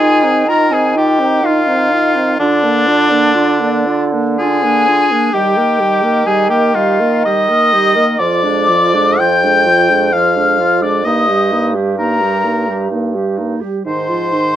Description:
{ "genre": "classical, slow romantic movement for wind quintet", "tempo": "63 BPM", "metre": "3/4", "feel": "uneven beats, rubato", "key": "Eb major", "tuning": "A4 = 440 Hz", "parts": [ { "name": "silver concert flute", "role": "melody", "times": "0.0-14.6 s", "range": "D5 to G6", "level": "-16 LUFS", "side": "left 4 dB", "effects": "none" }, { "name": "clear oboe", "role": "second line", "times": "0.0-14.6 s", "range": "D4 to G5", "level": "-16 LUFS", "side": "left 1 dB", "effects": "none" }, { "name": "mellow French horn", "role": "accompaniment", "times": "0.0-14.6 s", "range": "Eb3 to Eb4", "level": "-19 LUFS", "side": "right 1 dB", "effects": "none" }, { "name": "warm clarinet", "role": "accompaniment", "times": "0.0-14.6 s", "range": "D4 to Bb4", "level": "-20 LUFS", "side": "right 9 dB", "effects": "none" }, { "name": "warm bassoon", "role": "bass", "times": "0.0-14.6 s", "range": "F2 to Eb3", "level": "-17 LUFS", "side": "right 2 dB", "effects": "none" } ], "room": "light reverb", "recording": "worn, warbling old tape, cassette tape, warbly pitch drift", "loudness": "-11 LUFS", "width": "side -11 dB against mid", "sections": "0.0-14.6 A section", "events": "none", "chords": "0.0 Fm7/Eb; 2.4 Bb/D; 5.3 Eb; 8.2 Ddim/F; 11.1 Eb/G; 13.9 Fm7/Ab", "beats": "0.49 1.44 | 2.40 3.35 4.39 | 5.34 6.25 7.25 | 8.19 9.19 10.13 | 11.05 11.99 12.91 | 13.86" }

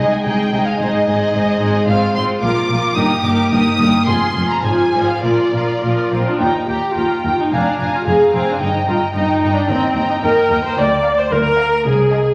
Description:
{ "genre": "quick classical-period movement for string orchestra", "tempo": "110 BPM", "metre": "2/4", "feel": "rubato", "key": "Eb major", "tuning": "A4 = 440 Hz", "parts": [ { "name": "warm symphonic violin section", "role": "melody", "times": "0.0-12.3 s", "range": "D5 to Eb6", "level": "-24 LUFS", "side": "equal", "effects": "none" }, { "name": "warm studio violin section", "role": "second line", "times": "0.0-12.3 s", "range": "F4 to Ab5", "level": "-24 LUFS", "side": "equal", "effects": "none" }, { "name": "rich chamber viola section", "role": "accompaniment", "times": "0.0-12.3 s", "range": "F3 to D5", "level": "-19 LUFS", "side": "equal", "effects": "none" }, { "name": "rich chamber cello section", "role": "bass", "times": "0.0-12.3 s", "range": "C2 to C3", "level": "-26 LUFS", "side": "equal", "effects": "none" }, { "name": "warm chamber double bass section", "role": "bass", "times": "0.0-12.3 s", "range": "F1 to Eb2", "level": "-25 LUFS", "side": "equal", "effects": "none" } ], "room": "wet recital hall reverb, RT60 1.7 s", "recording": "vinyl crackle", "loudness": "-16 LUFS", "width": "mono", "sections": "0.0-6.4 A section; 6.4-12.3 B section", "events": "none", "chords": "0.0 Ab; 1.9 Fm/Ab; 2.4 Bb; 3.0 Eb/G; 4.1 Fm; 4.6 Fm/Ab; 5.2 Bb; 6.4 Eb; 7.5 Bb5/F; 8.6 Eb/G; 9.7 Eb; 10.8 Bb/D", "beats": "0.25 | 0.80 1.33 | 1.87 2.42 | 2.96 3.51 | 4.07 4.63 | 5.23 5.82 | 6.40 6.96 | 7.51 8.06 | 8.60 9.14 | 9.68 10.22 | 10.77 11.32 | 11.86" }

